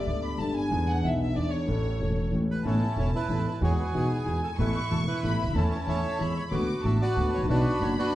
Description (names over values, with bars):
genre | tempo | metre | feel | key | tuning
tango | 186 BPM | 3/4 | rubato | A major | A4 = 442 Hz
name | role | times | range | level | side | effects
warm studio violin section | second line | 0.0-8.2 s | C#5 to D6 | -35 LUFS | left 1 dB | none
warm concert grand piano | accompaniment | 0.0-8.2 s | E1 to A4 | -28 LUFS | left 1 dB | none
upright bass | bass | 0.0-7.9 s | E1 to E2 | -29 LUFS | right 1 dB | none
bandoneon | melody | 2.5-8.2 s | B3 to E5 | -30 LUFS | right 1 dB | none
room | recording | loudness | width
wet large studio reverb, RT60 1.4 s | heard from further back in the room, nothing above 10.5 kHz | -24 LUFS | side -14 dB against mid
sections
0.0-2.6 A section; 2.6-8.2 B section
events
violin section solo 0.0-2.6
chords
0.0 Gadd9; 0.7 E7; 1.7 A; 2.6 Aadd9; 3.6 Eadd9; 4.6 Asus2; 5.5 A/E; 6.2 E; 6.5 D6; 7.5 Bm